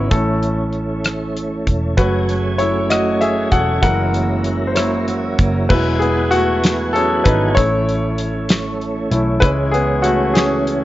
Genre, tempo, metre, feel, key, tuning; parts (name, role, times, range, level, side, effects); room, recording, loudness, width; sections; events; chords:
six-eight pop ballad; 65 BPM (dotted quarters); 6/8; straight; A4 = 440 Hz
clear baby grand piano; accompaniment; 0.0-10.8 s; F#3 to F#5; -18 LUFS; left 1 dB
tonewheel organ; sustained chords; 0.0-10.8 s; C#3 to G#5; -23 LUFS; right 2 dB; chorus vibrato, slow rotary speaker
vintage muted picked electric bass; bass; 0.0-10.8 s; E1 to C#2; -22 LUFS; equal
damped 70s drum kit; drums; 0.1-10.8 s; crash cymbal, hi-hat, kick drum, rim click, snare drum; -18 LUFS; equal
picked steel-string acoustic guitar; arpeggios; 2.0-6.3 s; E3 to G#4; -24 LUFS; right 4 dB
light reverb, small room ambience; worn, warbling old tape, cassette tape, warbly pitch drift, nothing above 7.6 kHz; -15 LUFS; side -15 dB against mid
0.0-5.7 A section; 5.7-10.8 B section
grand piano solo 0.0-5.7, 5.7-10.8
0.1 A; 2.0 F#madd9; 3.8 F#7; 5.7 Eadd9; 7.6 A; 9.4 C#m